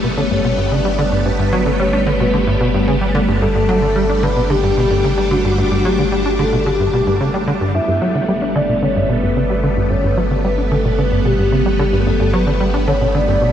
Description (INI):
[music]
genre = ambient, sequencer-driven space music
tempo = 111 BPM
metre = 4/4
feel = straight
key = G lydian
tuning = A4 = 440 Hz
[part]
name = phased string machine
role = sustained chords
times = 0.0-13.5 s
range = G3 to D4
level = -20 LUFS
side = equal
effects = ensemble chorus, phaser
[part]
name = tight sequencer bass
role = riff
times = 0.0-13.5 s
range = G2 to D4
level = -18 LUFS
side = equal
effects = lush chorus, analog delay
[part]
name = warm sub bass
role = bass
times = 0.0-13.5 s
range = G1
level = -21 LUFS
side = equal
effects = none
[part]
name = soft octave-layered synth lead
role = melody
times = 0.2-13.5 s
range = F#4 to E5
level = -19 LUFS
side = left 1 dB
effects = chorus, tremolo, cassette tape, analog delay
[sound]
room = moderate huge ambient reverb, RT60 8.7 s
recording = none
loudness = -14 LUFS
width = side -10 dB against mid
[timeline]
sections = 0.0-7.7 A section; 7.7-13.5 B section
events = none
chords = 0.0 Gadd9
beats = 0.17 0.71 | 1.26 1.80 2.34 2.88 | 3.42 3.96 4.50 5.04 | 5.58 6.12 6.66 7.20 | 7.74 8.28 8.82 9.36 | 9.90 10.45 10.98 11.53 | 12.07 12.61 13.15